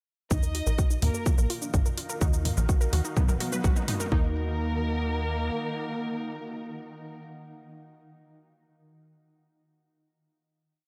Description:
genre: melodic techno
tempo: 126 BPM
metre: 4/4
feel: straight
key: Eb minor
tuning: A4 = 440 Hz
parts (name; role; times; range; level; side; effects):
- analog synth brass; melody; 0.3-7.2 s; Bb3 to Eb4; -39 LUFS; equal; chorus, sidechain pumping, tape echo
- rich chamber violin section; second line; 0.3-7.2 s; Bb4 to Eb5; -40 LUFS; equal; sidechain pumping, digital delay
- deep dark ambient pad; sustained chords; 1.0-7.2 s; Eb4 to F#5; -45 LUFS; equal; chorus, built-in reverb, sidechain pumping
- unison pluck; arpeggios; 0.3-4.3 s; D4 to B4; -40 LUFS; equal; sidechain pumping, digital delay
- synth brass stab; stabs; 0.3-7.2 s; Bb2 to Eb4; -40 LUFS; equal; chorus, phaser, sidechain pumping, digital delay
- tight sequencer bass; bass; 0.3-5.5 s; Bb1 to Eb2; -30 LUFS; equal; sidechain pumping
- swarming drone; drone; 1.4-7.2 s; Eb3 to Eb4; -47 LUFS; equal; built-in reverb, sidechain pumping
- electronic kick drum; drums; 0.3-4.2 s; none; -27 LUFS; equal; none
- punchy analog drum machine; drums; 0.3-4.2 s; hi-hat, shaker, toms; -36 LUFS; equal; overdrive
room: light reverb, digital ambience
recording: none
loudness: -27 LUFS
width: mono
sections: 0.3-4.1 build; 4.1-7.9 final chord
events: build-up 0.3-4.1; drum fill 0.3-4.1; filter sweep on synth pluck 0.3-4.1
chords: 0.3 Ebmadd9; 1.3 Bb; 2.2 Ebmadd9; 3.2 B; 4.1 Ebmadd9

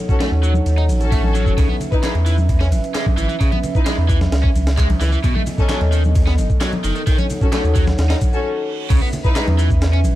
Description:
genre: breakbeat, breaks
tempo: 131 BPM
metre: 4/4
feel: straight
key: C# minor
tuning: A4 = 440 Hz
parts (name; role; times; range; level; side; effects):
- dark analog pad; sustained chords; 0.0-10.2 s; B3 to F#5; -27 LUFS; right 3 dB; chorus, sidechain pumping
- rich symphonic string section; stabs; 0.1-9.4 s; C#4 to B4; -26 LUFS; left 3 dB; dub echo
- breakbeat sampler-style drum kit; drums; 0.1-10.2 s; crash cymbal, kick drum, ride cymbal, snare drum; -18 LUFS; equal; none
- electronic shaker and handclaps; drums; 0.1-10.1 s; none; -34 LUFS; left 1 dB; none
- overdriven electric guitar; riff; 0.2-10.0 s; B2 to D#4; -26 LUFS; equal; low-pass filter, dub echo
- congas; percussion; 0.2-10.1 s; none; -28 LUFS; left 2 dB; none
- saturated sub bass; bass; 0.3-10.1 s; F#1 to E2; -16 LUFS; equal; none
- reverse cymbal; sound effects; 8.3-8.9 s; none; -36 LUFS; right 9 dB; none
room: digital ambience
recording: dark, warm production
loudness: -15 LUFS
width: side -15 dB against mid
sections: 0.0-8.9 A section; 8.9-10.2 B section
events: reverse cymbal 8.3-8.9; break 8.4-8.9; drop 8.9-10.2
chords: 0.0 D#m7b5; 1.6 C#m7; 5.2 B7; 7.1 D#m7b5; 8.9 C#m7

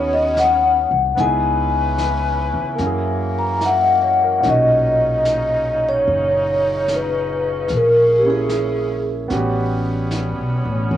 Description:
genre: jazz ballad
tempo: 74 BPM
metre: 4/4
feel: swing 69% on 8ths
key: B major from 4.4 s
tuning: A4 = 441 Hz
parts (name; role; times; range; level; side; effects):
- vibraphone with soft mallets; melody; 0.0-9.0 s; G4 to A#5; -16 LUFS; left 2 dB; cassette tape
- warm baby grand piano; accompaniment; 0.0-10.9 s; A#2 to E5; -25 LUFS; right 5 dB; cassette tape
- mellow saxophone section; sustained chords; 0.0-11.0 s; C#3 to B4; -28 LUFS; left 1 dB; cassette tape
- upright bass; bass; 0.0-11.0 s; F#1 to C#3; -24 LUFS; equal; none
- jazz brush drum kit; drums; 0.4-11.0 s; brushed snare drum, hi-hat, snare drum; -34 LUFS; equal; cassette tape
room: light reverb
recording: home recording on cassette, small room ambience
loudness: -16 LUFS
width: side -11 dB against mid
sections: 0.0-4.4 A section; 4.4-11.0 B section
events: none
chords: 0.0 G#m7; 1.2 C#m7; 2.8 F#7; 4.4 Bmaj9; 7.7 A#m7b5; 9.3 A13

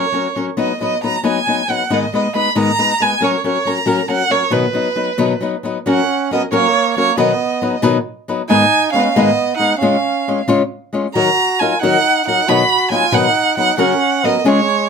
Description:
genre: mexican folk, mariachi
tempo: 91 BPM (dotted quarters)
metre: 6/8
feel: rubato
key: B major, F# major from 5.9 s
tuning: A4 = 440 Hz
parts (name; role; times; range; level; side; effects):
- rich violin; melody; 0.0-14.9 s; B4 to B5; -16 LUFS; right 3 dB; none
- flamenco guitar; accompaniment; 0.0-14.6 s; G#2 to C#5; -16 LUFS; left 4 dB; none
- mellow trumpet; second line; 5.9-14.9 s; G#3 to F#4; -20 LUFS; right 6 dB; none
room: light reverb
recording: close, detailed microphones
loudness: -13 LUFS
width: side -6 dB against mid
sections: 0.0-5.9 A section; 5.9-14.9 B section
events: none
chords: 0.0 F#; 0.6 B/F#; 1.9 G#m; 3.2 F#; 4.5 B; 5.9 F#; 7.2 B; 8.5 G#m; 9.8 C#; 11.1 D#m; 12.5 B; 13.8 F#/C#

